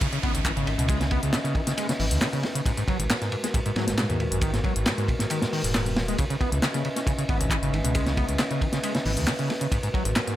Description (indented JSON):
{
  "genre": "breakbeat, breaks",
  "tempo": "136 BPM",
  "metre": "4/4",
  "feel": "straight",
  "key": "unclear",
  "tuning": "A4 = 442 Hz",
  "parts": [
    { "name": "dark analog pad", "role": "sustained chords", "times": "0.0-10.4 s", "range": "G#3 to E5", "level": "-32 LUFS", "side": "left 1 dB", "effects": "chorus, sidechain pumping" },
    { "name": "overdriven acid bass", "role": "riff", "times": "0.0-10.4 s", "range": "G#1 to C#4", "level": "-28 LUFS", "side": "equal", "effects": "distortion, ensemble chorus, digital delay" },
    { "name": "crunchy breakbeat drum kit", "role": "drums", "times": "0.0-10.4 s", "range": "hi-hat, kick drum, ride cymbal, snare drum", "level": "-27 LUFS", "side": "equal", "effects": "none" },
    { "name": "punchy analog drum machine", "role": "drums", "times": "0.0-10.4 s", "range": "handclaps, hi-hat", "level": "-32 LUFS", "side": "left 1 dB", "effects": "overdrive" },
    { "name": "downlifter", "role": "sound effects", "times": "0.0-2.7 s", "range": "none", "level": "-38 LUFS", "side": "right 2 dB", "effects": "none" },
    { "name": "dark detuned saw bass", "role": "bass", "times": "0.2-10.1 s", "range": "D#1 to G#2", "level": "-28 LUFS", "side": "equal", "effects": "none" }
  ],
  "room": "little or no reverb",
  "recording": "none",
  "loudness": "-23 LUFS",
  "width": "side -13 dB against mid",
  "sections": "0.0-10.4 A section",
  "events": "none",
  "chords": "0.0 C#m9; 2.7 G#m9; 6.2 C#m9; 9.7 G#m9"
}